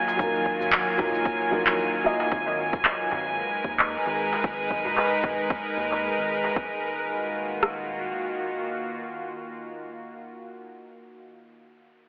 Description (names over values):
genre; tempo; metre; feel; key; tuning
organic downtempo; 113 BPM; 4/4; swing 56% on 16ths; Eb minor; A4 = 439 Hz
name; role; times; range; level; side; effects
felt-muted upright piano; accompaniment; 0.0-2.3 s; Gb3 to Eb5; -31 LUFS; equal; sidechain pumping, tape echo
bowed-like drone; sustained chords; 0.0-9.9 s; Eb3 to Cb5; -32 LUFS; equal; built-in reverb, sidechain pumping
round analog bass; bass; 0.0-8.1 s; Eb1 to Eb2; -46 LUFS; equal; sidechain pumping
drifting glass-harmonics texture; texture; 0.0-6.6 s; Ab5; -32 LUFS; equal; chorus, built-in reverb
electronic cabasa and handclaps; drums; 0.1-6.5 s; none; -28 LUFS; equal; low-pass filter on perc, low-pass filter on snare, low-pass filter on room
darbuka; percussion; 0.1-6.5 s; none; -40 LUFS; equal; none
deep house drum kit; drums; 0.2-7.8 s; kick drum, rim click; -30 LUFS; equal; overdrive
room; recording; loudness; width
wet echo chamber reverb, RT60 2.1 s; heavily compressed radio sound, telephone sound; -26 LUFS; mono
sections
0.0-6.6 A section; 6.6-10.8 B section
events
filter sweep on drum 0.0-6.6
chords
0.0 Ebmadd9; 2.3 Abm; 6.6 Ebmadd9